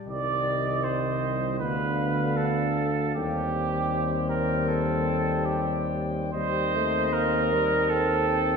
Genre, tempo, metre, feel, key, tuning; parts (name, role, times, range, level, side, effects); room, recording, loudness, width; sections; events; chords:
classical, hymn-like piece for brass band; 78 BPM; 4/4; rubato; A4 = 440 Hz
clear trombone section; accompaniment; 0.0-8.6 s; G3 to C4; -34 LUFS; left 1 dB
dark trumpet section; melody; 0.1-8.6 s; Eb5 to G5; -32 LUFS; left 6 dB
clear flugelhorn; second line; 0.1-8.6 s; G4 to D5; -28 LUFS; right 4 dB
warm euphonium; accompaniment; 0.1-8.6 s; D3 to C4; -33 LUFS; right 2 dB
mellow tuba; bass; 0.1-8.6 s; C2 to Eb2; -29 LUFS; left 1 dB
wet scoring stage reverb, RT60 1.9 s; heard from further back in the room; -23 LUFS; side -5 dB against mid
0.0-8.6 A section
0.1 Cm; 1.6 Bdim/D; 3.2 Cm/Eb; 6.3 Cm7/Eb